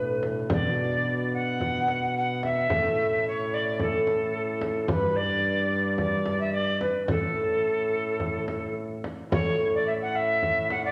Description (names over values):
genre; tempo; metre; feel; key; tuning
classical, renaissance-style consort dance; 109 BPM; 4/4; straight; A mixolydian; A4 = 441 Hz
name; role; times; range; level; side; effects
mellow alto recorder; melody; 0.0-10.9 s; A4 to F#5; -29 LUFS; equal; none
concert harp; accompaniment; 0.0-10.9 s; G2 to B4; -34 LUFS; equal; none
warm trombone; bass; 0.0-10.9 s; G2 to B2; -35 LUFS; equal; none
frame drum; percussion; 0.2-10.9 s; none; -34 LUFS; equal; none
room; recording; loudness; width
wet recital hall reverb, RT60 1.5 s; none; -26 LUFS; mono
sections
0.0-9.3 A section; 9.3-10.9 A section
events
none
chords
0.0 G; 0.5 Bm; 2.7 A; 4.9 G; 7.1 A